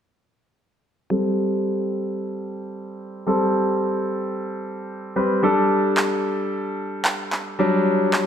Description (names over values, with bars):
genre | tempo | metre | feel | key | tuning
dance-pop | 111 BPM | 4/4 | straight | A dorian | A4 = 440 Hz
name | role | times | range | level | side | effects
clear grand piano | accompaniment | 1.1-8.3 s | F#3 to B4 | -21 LUFS | equal | low-pass filter
electronic handclaps | drums | 6.0-8.3 s | none | -22 LUFS | right 1 dB | none
room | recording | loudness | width
moderate concert hall reverb, RT60 2.0 s | none | -20 LUFS | side -8 dB against mid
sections
1.1-8.3 A section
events
filter sweep on grand piano 1.1-8.3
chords
1.1 Am7; 5.4 Dsus4